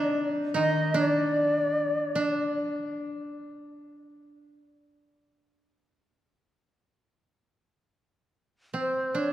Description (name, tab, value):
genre	japanese traditional, Japanese chamber music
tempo	free time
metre	none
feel	none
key	unclear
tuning	A4 = 439 Hz
part	bright reedy shakuhachi	melody	0.0-2.6, 8.8-9.3 s	C5 to Eb5	-28 LUFS	left 1 dB	none
part	koto	second line	0.0-9.3 s	C4 to Eb4	-28 LUFS	right 1 dB	none
part	koto	accompaniment	0.0-2.9 s	D3 to D4	-34 LUFS	left 2 dB	none
room	wet church reverb, RT60 3.0 s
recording	dark, warm production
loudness	-25 LUFS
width	side -12 dB against mid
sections	0.0-9.3 A section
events	none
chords	none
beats	free time